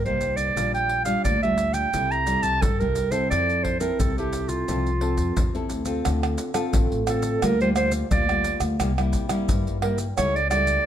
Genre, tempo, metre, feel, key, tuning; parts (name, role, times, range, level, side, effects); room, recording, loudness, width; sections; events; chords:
samba and choro; 87 BPM; 4/4; straight; F major, D minor from 6.1 s; A4 = 442 Hz
warm clarinet; melody; 0.0-10.8 s; F4 to Bb5; -24 LUFS; right 3 dB; plate reverb
nylon-string guitar; accompaniment; 0.0-10.8 s; G2 to A4; -27 LUFS; left 2 dB
upright bass; bass; 0.1-10.8 s; A1 to G2; -27 LUFS; left 1 dB
maracas, pandeiro, surdo and tamborim; percussion; 0.1-10.9 s; -27 LUFS; right 1 dB
light reverb; -21 LUFS; side -10 dB against mid
0.0-6.1 A section; 6.1-10.9 B section
0.0 Cm7; 0.6 Gm7/Bb; 1.9 C6; 3.3 Fmaj7; 6.1 Dm7; 7.4 Gm7/D; 8.8 C7; 10.2 A7/C#